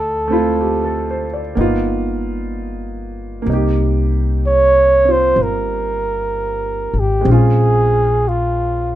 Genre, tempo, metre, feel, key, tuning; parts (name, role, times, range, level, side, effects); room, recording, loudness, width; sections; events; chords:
jazz ballad; 63 BPM; 4/4; swing 67% on 8ths; A4 = 440 Hz
breathy flugelhorn; melody; 0.0-9.0 s; F4 to Db5; -16 LUFS; right 1 dB
upright bass; bass; 0.0-9.0 s; G1 to D2; -19 LUFS; left 1 dB
clear concert grand piano; accompaniment; 0.3-9.0 s; C3 to D5; -21 LUFS; right 2 dB
light reverb; minimal, uncompressed stereo recording; -14 LUFS; side -13 dB against mid
0.0-9.0 A section
0.0 Dm9; 1.6 G7alt; 3.5 Cm7; 7.3 Bbm9